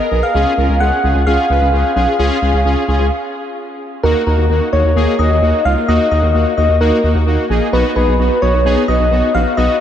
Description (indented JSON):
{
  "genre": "synth-pop",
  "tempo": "130 BPM",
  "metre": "4/4",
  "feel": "straight",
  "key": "Eb minor",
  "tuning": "A4 = 440 Hz",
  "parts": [
    { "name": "soft struck synth lead", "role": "melody", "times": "0.0-9.8 s", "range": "Bb4 to Gb5", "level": "-16 LUFS", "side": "left 1 dB", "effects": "chorus, diffuse ambient delay" },
    { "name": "analog synth brass", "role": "accompaniment", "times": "0.0-9.8 s", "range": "Bb3 to Cb5", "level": "-17 LUFS", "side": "left 2 dB", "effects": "chorus" },
    { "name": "rubbery square bass", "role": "bass", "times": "0.1-9.7 s", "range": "Bb1 to Eb2", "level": "-15 LUFS", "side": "right 1 dB", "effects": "none" }
  ],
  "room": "wet cathedral reverb, RT60 5.6 s",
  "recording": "dreamy mix soaked in reverb",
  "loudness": "-12 LUFS",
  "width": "side -10 dB against mid",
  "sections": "0.0-4.0 A section; 4.0-9.8 B section",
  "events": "stop 3.1-4.0",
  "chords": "0.3 Db; 4.0 Ebm; 7.7 B",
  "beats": "| 0.34 0.81 1.27 1.73 | 2.19 2.65 3.11 3.57 | 4.04 4.50 4.96 5.42 | 5.88 6.34 6.80 7.27 | 7.73 8.19 8.65 9.11 | 9.57"
}